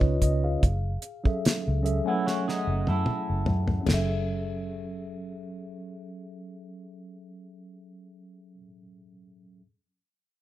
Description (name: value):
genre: R&B, neo-soul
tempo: 74 BPM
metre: 4/4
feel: swing 53% on 16ths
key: F# dorian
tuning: A4 = 440 Hz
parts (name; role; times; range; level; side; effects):
- mellow tine electric piano; accompaniment; 0.0-9.6 s; C#3 to G#5; -32 LUFS; equal; medium stereo tremolo
- vintage muted fingered electric bass; bass; 0.0-8.6 s; F#1 to F#2; -27 LUFS; equal; none
- damped 70s drum kit; drums; 0.0-4.1 s; crash cymbal, hi-hat, kick drum, snare drum, toms; -26 LUFS; equal; none
- electric guitar through a small old amp; second line; 2.1-3.8 s; B3 to A4; -33 LUFS; right 3 dB; none
room: moderate studio reverb, RT60 0.6 s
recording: rough home demo mix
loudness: -24 LUFS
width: side -14 dB against mid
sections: 0.0-3.9 A section; 3.9-7.1 B section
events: drum fill 2.2-3.9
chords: 0.0 C#9; 0.6 F#m9